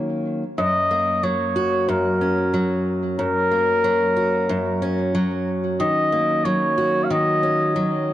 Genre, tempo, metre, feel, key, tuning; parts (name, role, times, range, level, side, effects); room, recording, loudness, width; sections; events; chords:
folktronica; 92 BPM; 4/4; straight; A4 = 440 Hz
picked steel-string acoustic guitar; arpeggios; 0.0-8.1 s; Gb2 to Gb4; -21 LUFS; equal; tape echo
mellow flugelhorn; melody; 0.6-8.1 s; Bb4 to F5; -21 LUFS; equal; tape echo
light reverb; dry, close 1970s-style studio recording; -18 LUFS; side -13 dB against mid
0.6-8.1 A section
break 0.0-0.6
0.0 Ebm7; 0.6 Gb; 5.8 Ebm7